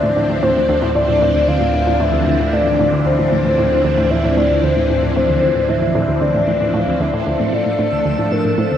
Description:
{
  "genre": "ambient, sequencer-driven space music",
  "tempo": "114 BPM",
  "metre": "4/4",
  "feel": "straight",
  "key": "D minor",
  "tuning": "A4 = 441 Hz",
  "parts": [
    { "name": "soft octave-layered synth lead", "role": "melody", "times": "0.0-8.8 s", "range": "Bb4 to F5", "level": "-17 LUFS", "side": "left 1 dB", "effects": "chorus, tremolo, ping-pong delay" },
    { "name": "phased string machine", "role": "sustained chords", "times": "0.0-8.8 s", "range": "E3 to A4", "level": "-20 LUFS", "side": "equal", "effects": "ensemble chorus, phaser" },
    { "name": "analog pluck", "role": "riff", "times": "0.0-8.8 s", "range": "D2 to A2", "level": "-20 LUFS", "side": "right 1 dB", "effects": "chorus, ping-pong delay" },
    { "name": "fat analog bass", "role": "bass", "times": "0.0-7.2 s", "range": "D2", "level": "-22 LUFS", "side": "equal", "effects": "none" },
    { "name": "twinkling granular texture", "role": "texture", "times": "7.6-8.8 s", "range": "E6", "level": "-31 LUFS", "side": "right 5 dB", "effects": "built-in reverb" }
  ],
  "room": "wet huge ambient reverb, RT60 8.2 s",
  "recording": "worn, warbling old tape, cassette tape, warbly pitch drift",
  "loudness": "-14 LUFS",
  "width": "side -10 dB against mid",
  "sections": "0.0-7.3 A section; 7.3-8.8 B section",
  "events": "filter sweep on synth arpeggio sound 0.0-7.3",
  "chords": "0.0 Dm7"
}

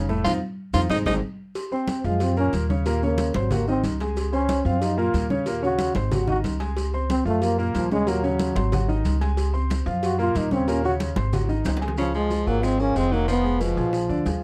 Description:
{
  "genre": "Afro-Cuban jazz",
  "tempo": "184 BPM",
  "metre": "4/4",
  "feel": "straight",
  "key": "Db major",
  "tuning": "A4 = 440 Hz",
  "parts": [
    { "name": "warm concert grand piano", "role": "accompaniment", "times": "0.0-14.4 s", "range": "A2 to C6", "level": "-30 LUFS", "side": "equal", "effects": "none" },
    { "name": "upright bass", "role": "bass", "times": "0.0-14.4 s", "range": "F1 to Gb2", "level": "-28 LUFS", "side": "equal", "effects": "none" },
    { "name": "bongos and cowbell", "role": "percussion", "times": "0.1-14.4 s", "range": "none", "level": "-37 LUFS", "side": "equal", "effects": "none" },
    { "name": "congas", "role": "percussion", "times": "0.1-14.4 s", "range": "none", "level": "-32 LUFS", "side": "equal", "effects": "none" },
    { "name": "maracas", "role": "percussion", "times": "0.1-14.4 s", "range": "none", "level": "-46 LUFS", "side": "equal", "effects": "none" },
    { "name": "edgy tenor saxophone", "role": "second line", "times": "0.2-1.1, 12.0-13.9 s", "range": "Cb3 to F4", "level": "-31 LUFS", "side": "equal", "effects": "none" },
    { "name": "breathy trombone", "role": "melody", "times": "1.7-14.4 s", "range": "Db3 to Gb4", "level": "-27 LUFS", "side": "equal", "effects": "none" }
  ],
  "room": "little or no reverb",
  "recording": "dark, warm production",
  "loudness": "-23 LUFS",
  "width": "mono",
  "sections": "0.0-1.6 A section; 1.6-12.0 A section; 12.0-14.4 B section",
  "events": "tenor saxophone solo 0.0-1.6; band accent 0.2-1.6; trombone solo 1.6-12.0; drum fill 11.3-12.0",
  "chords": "0.2 F5; 0.9 Ab; 1.6 Fm; 2.2 Gbmaj7; 2.9 Eb5; 3.5 Ab5; 4.2 Dbmaj7; 4.8 Gbmaj7; 5.5 Ebm7; 6.1 Ab5; 6.8 Dbmaj7; 7.4 Gbmaj7; 8.1 Ebm7; 8.7 Ab5; 9.4 Dbmaj7; 10.0 Gbmaj7; 10.7 Eb5; 11.3 Ab5; 12.0 Db; 13.3 Fm7b5; 13.9 Bb7"
}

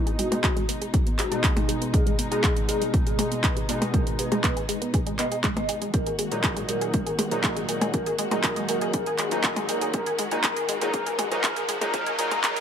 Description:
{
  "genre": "melodic techno",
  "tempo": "120 BPM",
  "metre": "4/4",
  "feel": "straight",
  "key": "G# minor",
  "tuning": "A4 = 440 Hz",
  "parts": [
    { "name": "expressive synth lead", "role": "melody", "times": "0.0-12.6 s", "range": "D#4 to D#5", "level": "-31 LUFS", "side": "left 1 dB", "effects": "ensemble chorus, sidechain pumping, dub echo" },
    { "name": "dark detuned synth bell", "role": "second line", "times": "0.0-12.6 s", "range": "D#4 to D#5", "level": "-35 LUFS", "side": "equal", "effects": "chorus, sidechain pumping, low-pass filter, dub echo" },
    { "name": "dark studio string section", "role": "sustained chords", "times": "0.0-12.6 s", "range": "B2 to F#4", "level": "-36 LUFS", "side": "left 3 dB", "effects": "vintage 12-bit sampler grit, sidechain pumping" },
    { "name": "tight sequenced synth", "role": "arpeggios", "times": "0.0-12.6 s", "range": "G#3 to G#4", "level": "-32 LUFS", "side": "equal", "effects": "chorus, sidechain pumping, dub echo" },
    { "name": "sync-sweep polysynth", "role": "stabs", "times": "0.0-12.6 s", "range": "A#2 to D#4", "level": "-32 LUFS", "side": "right 1 dB", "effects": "chorus, sidechain pumping, dub echo" },
    { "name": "techno drum kit", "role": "drums", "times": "0.1-12.6 s", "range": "handclaps, hi-hat, percussion blips", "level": "-27 LUFS", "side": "right 1 dB", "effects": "none" },
    { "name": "swelling detuned saw bass", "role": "bass", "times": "0.2-12.4 s", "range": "G#1 to G#2", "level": "-42 LUFS", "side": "left 1 dB", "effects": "none" },
    { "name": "electronic kick drum", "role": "drums", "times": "0.4-12.5 s", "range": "none", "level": "-25 LUFS", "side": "equal", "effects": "none" },
    { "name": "riser", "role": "sound effects", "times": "8.0-12.6 s", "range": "none", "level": "-37 LUFS", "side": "equal", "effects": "none" }
  ],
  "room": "light reverb",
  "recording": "high-pass filter",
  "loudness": "-22 LUFS",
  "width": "side -8 dB against mid",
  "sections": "0.0-12.6 A section",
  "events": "build-up 0.0-12.6; filter sweep on synth arpeggio sound 0.0-12.6; filter sweep on analog synth lead 0.0-12.6; filter sweep on synth bell 0.0-12.6; filter sweep 0.0-12.6; riser 8.0-12.6",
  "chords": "0.0 G#m; 5.9 D#m/G#"
}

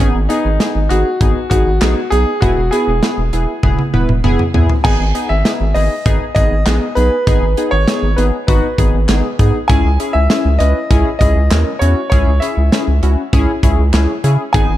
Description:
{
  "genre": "synth-pop",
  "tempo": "99 BPM",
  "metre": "4/4",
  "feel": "straight",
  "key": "G# minor",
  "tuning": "A4 = 440 Hz",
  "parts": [
    { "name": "clear baby grand piano", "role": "melody", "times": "0.0-14.8 s", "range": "D#4 to G#5", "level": "-19 LUFS", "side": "equal", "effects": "ping-pong delay" },
    { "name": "funky polysynth comp", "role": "accompaniment", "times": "0.0-14.7 s", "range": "B3 to B4", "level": "-19 LUFS", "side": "left 2 dB", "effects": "chorus" },
    { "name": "round analog bass", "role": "bass", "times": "0.0-14.8 s", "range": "E1 to C#3", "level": "-14 LUFS", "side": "equal", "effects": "none" },
    { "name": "modern studio drum kit", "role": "drums", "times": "0.0-14.7 s", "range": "crash cymbal, handclaps, hi-hat, kick drum, snare drum, toms", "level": "-16 LUFS", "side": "equal", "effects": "none" }
  ],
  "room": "studio ambience",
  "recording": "dark, warm production",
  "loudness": "-12 LUFS",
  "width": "side -14 dB against mid",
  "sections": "0.0-4.8 A section; 4.8-14.8 B section",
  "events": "drum fill 3.6-4.8",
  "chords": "0.0 G#m; 2.4 E; 4.8 G#m; 9.7 C#m"
}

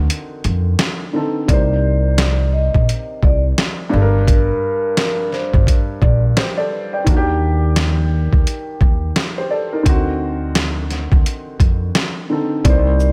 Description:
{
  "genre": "hip hop, boom-bap hip-hop",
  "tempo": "86 BPM",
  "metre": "4/4",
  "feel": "swing 61% on 16ths",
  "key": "unclear",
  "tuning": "A4 = 442 Hz",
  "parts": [
    { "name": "dark grand piano", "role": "accompaniment", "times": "0.0-13.1 s", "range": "G2 to G5", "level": "-25 LUFS", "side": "equal", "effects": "cassette tape, high-pass filter, low-pass filter" },
    { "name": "upright bass", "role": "bass", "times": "0.0-13.1 s", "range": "G1 to F2", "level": "-19 LUFS", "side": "equal", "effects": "none" },
    { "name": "boom bap sampler-style drum kit", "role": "drums", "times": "0.1-13.1 s", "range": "hi-hat, kick drum, shaker, snare drum", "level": "-18 LUFS", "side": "equal", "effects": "none" },
    { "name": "vibraphone with soft mallets", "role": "melody", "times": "1.5-6.2, 12.6-13.1 s", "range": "Bb4 to Eb5", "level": "-25 LUFS", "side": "equal", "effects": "high-pass filter, low-pass filter, tape echo" }
  ],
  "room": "light reverb",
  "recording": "none",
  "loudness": "-17 LUFS",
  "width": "mono",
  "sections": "0.0-12.6 A section",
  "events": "break 0.0-1.5",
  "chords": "0.0 D7b9; 1.5 Cm9; 3.9 Gm; 7.1 Ebmaj7; 9.9 D7b9"
}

